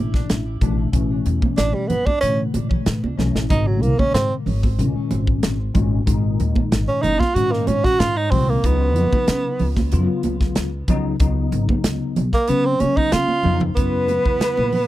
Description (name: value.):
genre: electric jazz fusion.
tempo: 94 BPM.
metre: 4/4.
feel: straight.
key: unclear.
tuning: A4 = 440 Hz.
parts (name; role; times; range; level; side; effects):
bell-like tine electric piano; accompaniment; 0.0-14.8 s; A#2 to E#4; -24 LUFS; left 4 dB; ensemble chorus.
upright bass; bass; 0.0-14.9 s; F#1 to C#3; -22 LUFS; equal; none.
modern studio drum kit; drums; 0.1-14.9 s; hi-hat, kick drum, snare drum, toms; -21 LUFS; equal; none.
congas; percussion; 0.6-14.9 s; none; -26 LUFS; right 5 dB; none.
warm tenor saxophone; melody; 1.6-14.9 s; F#3 to F#4; -21 LUFS; right 2 dB; tape echo.
bright reedy silver concert flute; second line; 13.8-14.9 s; B4; -26 LUFS; left 10 dB; none.
room: little or no reverb.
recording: dry, close 1970s-style studio recording.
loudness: -17 LUFS.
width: side -15 dB against mid.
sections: 0.0-13.8 A section; 13.8-14.9 B section.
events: tenor saxophone solo 0.0-13.8; drum fill 3.2-3.5, 13.0-13.8.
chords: 0.0 Asus4; 3.5 G#sus4; 8.6 C#9sus4; 13.8 F#7sus4.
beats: 0.29 | 0.93 1.58 2.22 2.86 | 3.50 4.15 4.79 5.43 | 6.07 6.71 7.36 8.00 | 8.64 9.28 9.92 10.56 | 11.20 11.84 12.48 13.13 | 13.77 14.41.